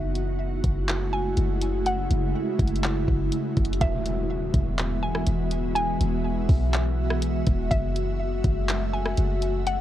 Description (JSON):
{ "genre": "hip hop, atmospheric cloud-rap", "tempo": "123 BPM", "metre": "4/4", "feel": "half-time", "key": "E major", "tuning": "A4 = 439 Hz", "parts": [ { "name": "mallet-like synth pluck", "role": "melody", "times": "0.0-9.8 s", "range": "E5 to G#5", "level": "-32 LUFS", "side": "equal", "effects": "chorus, phaser, low-pass filter, digital delay" }, { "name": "ethereal airy pad", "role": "sustained chords", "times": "0.0-9.8 s", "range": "C#3 to E5", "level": "-28 LUFS", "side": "equal", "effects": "ensemble chorus, built-in reverb, sidechain pumping" }, { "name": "warm 808-style bass", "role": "bass", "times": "0.0-9.8 s", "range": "E1 to B1", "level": "-26 LUFS", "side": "equal", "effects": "none" }, { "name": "smooth R&B drum kit", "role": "drums", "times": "0.2-9.8 s", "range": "handclaps, hi-hat, kick drum, rim click", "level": "-26 LUFS", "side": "equal", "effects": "none" }, { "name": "impact", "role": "sound effects", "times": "3.8-5.8 s", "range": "none", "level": "-36 LUFS", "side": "equal", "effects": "none" } ], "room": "digital ambience", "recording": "worn, warbling old tape, cassette tape, warbly pitch drift", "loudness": "-22 LUFS", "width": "side -12 dB against mid", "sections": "0.0-3.8 A section; 3.8-9.8 B section", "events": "impact 3.8-5.8", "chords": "0.0 F#m9; 3.8 Eadd9; 7.7 F#m9" }